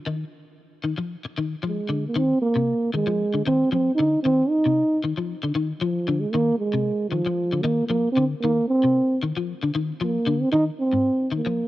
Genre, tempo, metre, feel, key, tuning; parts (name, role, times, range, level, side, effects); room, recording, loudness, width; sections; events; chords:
afrobeat; 115 BPM; 4/4; swing 53% on 16ths; F dorian; A4 = 440 Hz
electric guitar at the edge of break-up; arpeggios; 0.1-11.6 s; Ab2 to F3; -26 LUFS; left 3 dB; ensemble chorus
trombone with bucket mute; melody; 1.7-11.7 s; F3 to Eb4; -21 LUFS; right 2 dB
small room ambience; dry, close 1970s-style studio recording; -20 LUFS; side -16 dB against mid
0.0-2.2 A section; 2.2-11.7 B section
0.0 F5; 2.2 F7(no3)